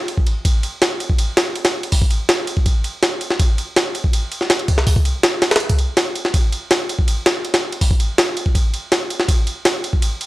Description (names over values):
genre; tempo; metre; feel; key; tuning
drum and bass; 163 BPM; 4/4; straight; none; none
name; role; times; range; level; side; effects
jungle sampler-style drum kit; drums; 0.1-10.3 s; hi-hat, kick drum, ride cymbal, snare drum; -16 LUFS; equal; none
room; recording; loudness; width
light reverb; dry, gritty hardware recording; -16 LUFS; side -18 dB against mid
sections
0.0-10.3 A section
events
none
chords
none